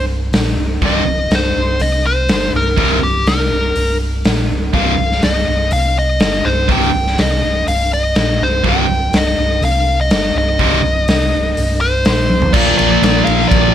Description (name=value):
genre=hard rock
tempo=123 BPM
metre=4/4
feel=straight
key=C minor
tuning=A4 = 435 Hz
part: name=nasal lead guitar with a parked wah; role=melody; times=0.0-13.7 s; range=G4 to G5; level=-17 LUFS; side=left 1 dB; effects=overdrive
part: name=hollow-body short-scale fingered electric bass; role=bass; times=0.0-13.7 s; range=C1 to C2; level=-18 LUFS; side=equal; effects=none
part: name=raw garage drum kit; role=drums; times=0.3-13.6 s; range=crash cymbal, hi-hat, kick drum, ride cymbal, snare drum, toms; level=-17 LUFS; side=equal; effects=none
part: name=high-gain distorted guitar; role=riff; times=0.8-13.7 s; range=C2 to Bb3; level=-18 LUFS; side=right 12 dB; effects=distortion
part: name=overdriven electric guitar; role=riff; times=0.8-13.7 s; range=C2 to Bb3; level=-18 LUFS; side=left 13 dB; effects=none
room=light reverb, small room ambience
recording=none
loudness=-12 LUFS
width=side -10 dB against mid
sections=0.0-12.5 A section; 12.5-13.7 B section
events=drum fill 12.3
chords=0.0 Cm; 12.5 Bb